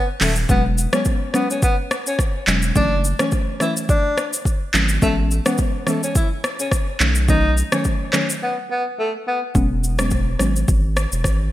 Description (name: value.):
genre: afrobeats.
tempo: 106 BPM.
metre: 4/4.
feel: swing 55% on 16ths.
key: E major.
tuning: A4 = 440 Hz.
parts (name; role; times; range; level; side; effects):
breathy tenor saxophone; melody; 0.0-9.4 s; A3 to E4; -24 LUFS; left 1 dB; digital delay.
soft round pluck; accompaniment; 0.2-10.6 s; D#3 to C#4; -23 LUFS; equal; chorus.
saturated sub bass; bass; 0.2-11.5 s; D#1 to B1; -20 LUFS; equal; none.
afro-pop drum kit; drums; 0.2-11.4 s; handclaps, hi-hat, kick drum, rim click, shaker; -20 LUFS; equal; overdrive, gated reverb.
room: light reverb.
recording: bright 1980s-style digital production.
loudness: -17 LUFS.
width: side -14 dB against mid.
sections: 0.0-9.6 A section; 9.6-11.5 B section.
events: break 8.4-9.6.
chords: 0.5 E6; 2.8 F#m7; 5.0 Amaj7; 7.0 B7; 9.6 E6.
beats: | 0.49 1.06 1.63 2.19 | 2.76 3.32 3.89 4.46 | 5.02 5.59 6.15 6.72 | 7.29 7.85 8.42 8.98 | 9.55 10.12 10.68 11.25.